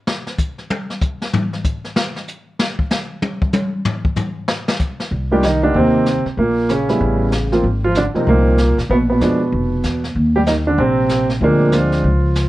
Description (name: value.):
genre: jazz piano trio.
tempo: 190 BPM.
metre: 4/4.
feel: swing 63% on 8ths.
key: C minor.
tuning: A4 = 440 Hz.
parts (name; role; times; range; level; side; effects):
jazz brush drum kit; drums; 0.1-12.5 s; brushed snare drum, hi-hat, kick drum, snare drum, toms; -20 LUFS; left 1 dB; none.
upright bass; bass; 5.1-12.5 s; F1 to F2; -18 LUFS; equal; none.
warm grand piano; melody; 5.3-12.5 s; Bb2 to G4; -16 LUFS; right 1 dB; none.
room: light reverb.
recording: worn, warbling old tape, cassette tape, warbly pitch drift.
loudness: -15 LUFS.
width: side -16 dB against mid.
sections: 0.0-5.1 A section; 5.1-12.5 B section.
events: drum solo 0.0-5.1.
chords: 0.0 N.C.; 5.1 Cm9; 6.4 Bbm; 7.0 A9; 7.6 Ab69; 8.9 Bb5; 10.2 Eb5; 11.4 Dm7b5.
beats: | 0.08 0.39 0.70 1.02 | 1.33 1.65 1.97 2.28 | 2.59 2.91 3.22 3.54 | 3.85 4.17 4.48 4.80 | 5.11 5.43 5.74 6.06 | 6.38 6.69 7.01 7.32 | 7.64 7.95 8.27 8.58 | 8.90 9.21 9.53 9.84 | 10.16 10.47 10.79 11.10 | 11.41 11.73 12.04 12.36.